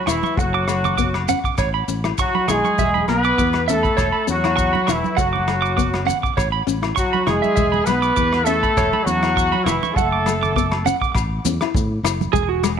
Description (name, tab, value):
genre	highlife guitar band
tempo	100 BPM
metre	4/4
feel	swing 54% on 16ths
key	A major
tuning	A4 = 438 Hz
part	warm horn section	melody	0.0-10.8 s	E3 to B4	-20 LUFS	left 1 dB	none
part	semi-hollow electric guitar	arpeggios	0.0-12.6 s	F#4 to D6	-23 LUFS	right 12 dB	slapback echo
part	nylon-string guitar	accompaniment	0.1-12.8 s	G#3 to E4	-27 LUFS	left 12 dB	none
part	fingered electric bass	bass	0.1-12.8 s	E1 to A2	-24 LUFS	equal	none
part	warm soul drum kit	drums	0.1-12.8 s	hi-hat, kick drum, rim click	-25 LUFS	equal	none
part	agogo bells	percussion	0.1-12.8 s	none	-31 LUFS	left 13 dB	none
part	congas	percussion	0.1-12.3 s	none	-28 LUFS	right 8 dB	none
part	maracas	percussion	0.1-12.8 s	none	-32 LUFS	left 16 dB	none
room	light reverb, studio reverb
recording	1960s-style stereo with parts hard left and right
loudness	-16 LUFS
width	side -7 dB against mid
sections	0.0-11.1 A section; 11.1-12.8 B section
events	clean electric guitar solo 11.1-12.8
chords	0.4 D/F#; 1.6 Aadd9; 2.8 E; 4.0 A69/E; 5.2 D/F#; 6.4 Aadd9; 7.6 E; 8.8 A69/E; 10.0 D/F#; 11.1 A5